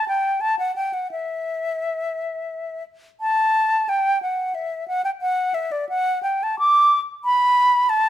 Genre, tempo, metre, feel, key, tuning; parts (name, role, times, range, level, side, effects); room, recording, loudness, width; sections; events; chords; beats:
classical, baroque-style fantasia for unaccompanied flute; 88 BPM; 3/4; uneven beats, rubato; A4 = 438 Hz
concert flute; solo; 0.0-8.1 s; D5 to D6; -19 LUFS; equal
moderate stone room reverb, RT60 1.1 s; close, detailed microphones; -19 LUFS; side -12 dB against mid
0.0-3.2 A section; 3.2-8.1 B section
0.43 | 1.11 1.82 2.51 | 3.21 3.89 4.56 | 5.22 5.89 6.58 | 7.24 7.89